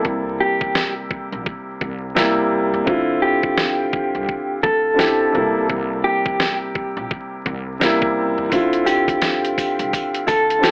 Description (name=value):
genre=hip hop, boom-bap hip-hop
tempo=85 BPM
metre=4/4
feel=swing 59% on 16ths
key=unclear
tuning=A4 = 440 Hz
part: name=dark baby grand piano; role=accompaniment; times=0.0-10.7 s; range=C3 to G4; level=-23 LUFS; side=equal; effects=cassette tape, high-pass filter, low-pass filter, plate reverb
part: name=boom bap sampler-style drum kit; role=drums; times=0.0-10.7 s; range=hi-hat, kick drum, snare drum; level=-24 LUFS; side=equal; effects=none
part: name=upright bass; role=bass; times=0.1-10.6 s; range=Bb1 to Eb2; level=-34 LUFS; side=equal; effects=none
part: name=mellow electric guitar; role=melody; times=0.4-10.7 s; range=G4 to A4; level=-23 LUFS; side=equal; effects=tremolo, high-pass filter, low-pass filter, plate reverb, tape echo
part: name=sleigh bells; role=percussion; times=8.5-10.7 s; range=none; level=-36 LUFS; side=equal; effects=none
room=moderate studio reverb, RT60 0.5 s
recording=vinyl crackle, AM radio sound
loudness=-20 LUFS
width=mono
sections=0.0-10.7 A section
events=break 0.0-8.5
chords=0.0 C7; 2.9 Dm9; 5.3 C7; 8.5 Dm9